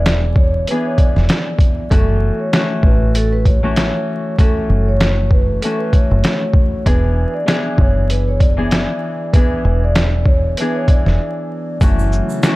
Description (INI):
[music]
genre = hip hop, boom-bap hip-hop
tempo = 97 BPM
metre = 4/4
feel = swing 57% on 16ths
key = F# minor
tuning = A4 = 440 Hz
[part]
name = vibraphone with soft mallets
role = melody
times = 0.0-11.8 s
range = A4 to D5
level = -23 LUFS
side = right 1 dB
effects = high-pass filter, low-pass filter
[part]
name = Celtic harp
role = accompaniment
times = 0.0-12.6 s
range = E3 to G#4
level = -21 LUFS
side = left 2 dB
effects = cassette tape, high-pass filter, low-pass filter
[part]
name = deep dub fingered electric bass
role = bass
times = 0.0-12.2 s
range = E1 to A1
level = -16 LUFS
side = equal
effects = none
[part]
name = trip hop sampler-style drum kit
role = drums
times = 0.1-12.6 s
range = hi-hat, kick drum, shaker, snare drum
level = -14 LUFS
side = equal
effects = none
[part]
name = hollow soft pad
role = sustained chords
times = 12.0-12.6 s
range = C#3 to E4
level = -24 LUFS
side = right 2 dB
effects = ensemble chorus, high-pass filter, low-pass filter
[part]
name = egg shaker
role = percussion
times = 11.8-12.6 s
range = none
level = -38 LUFS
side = right 9 dB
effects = none
[sound]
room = small room ambience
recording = dark, warm production, vinyl crackle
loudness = -13 LUFS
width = side -19 dB against mid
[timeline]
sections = 0.0-11.8 A section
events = break 11.2-11.8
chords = 0.0 E7; 1.9 F#m7; 6.9 E7; 11.8 F#m7